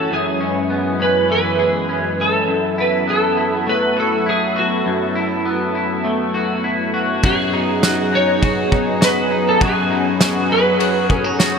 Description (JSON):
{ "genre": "dream pop", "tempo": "101 BPM", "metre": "4/4", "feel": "straight", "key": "unclear", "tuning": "A4 = 441 Hz", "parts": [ { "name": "clean lap steel guitar", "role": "melody", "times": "0.0-11.4 s", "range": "F#4 to C#5", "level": "-19 LUFS", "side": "right 1 dB", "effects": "ensemble chorus, digital delay" }, { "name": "lush unison pad", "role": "sustained chords", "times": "0.0-11.6 s", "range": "F#2 to B4", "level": "-21 LUFS", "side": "right 1 dB", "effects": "chorus, phaser" }, { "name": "electric guitar at the edge of break-up", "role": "arpeggios", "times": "0.0-11.6 s", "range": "F#2 to G#4", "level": "-20 LUFS", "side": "left 2 dB", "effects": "lush chorus, digital delay" }, { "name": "loose indie drum kit", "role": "drums", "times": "7.2-11.5 s", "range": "kick drum, ride cymbal, snare drum, tambourine", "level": "-20 LUFS", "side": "right 1 dB", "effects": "none" } ], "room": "moderate lush hall reverb, RT60 2.0 s, studio reverb", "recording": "bright 1980s-style digital production", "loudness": "-15 LUFS", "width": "side -6 dB against mid", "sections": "0.0-7.2 A section; 7.2-11.6 B section", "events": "none", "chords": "0.1 C#m7/F#; 2.5 B7sus4/F#; 7.2 G#m7/F#" }